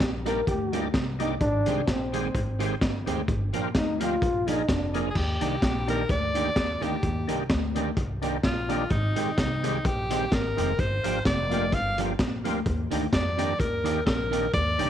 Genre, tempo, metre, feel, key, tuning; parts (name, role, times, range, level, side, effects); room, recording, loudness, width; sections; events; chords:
ska; 128 BPM; 4/4; swing 55% on 8ths; Eb major; A4 = 441 Hz
dark trombone; melody; 0.0-5.1 s; C4 to Bb4; -29 LUFS; left 1 dB; slapback echo
upright bass; bass; 0.0-14.9 s; F1 to F2; -30 LUFS; left 1 dB
crunchy breakbeat drum kit; drums; 0.0-14.9 s; crash cymbal, hi-hat, kick drum, snare drum; -28 LUFS; equal; slapback echo
electric guitar at the edge of break-up; accompaniment; 0.3-14.9 s; Eb3 to Ab4; -33 LUFS; right 13 dB
overdriven tonewheel organ; stabs; 0.3-14.9 s; Ab3 to D5; -35 LUFS; left 12 dB; chorus vibrato, slow rotary speaker
edgy alto saxophone; melody; 5.1-14.9 s; Eb4 to F5; -29 LUFS; left 1 dB
light reverb, small room ambience; 1960s-style stereo with parts hard left and right; -24 LUFS; side -10 dB against mid
0.0-5.2 A section; 5.2-14.9 A section
trombone solo 0.0-5.2; alto saxophone solo 5.2-14.9
0.0 Ebmaj7; 1.4 Abmaj7; 3.3 Gm7; 4.2 Bb7; 5.2 Ebmaj7; 8.9 Abmaj7; 10.8 Gm7; 12.7 Ebmaj7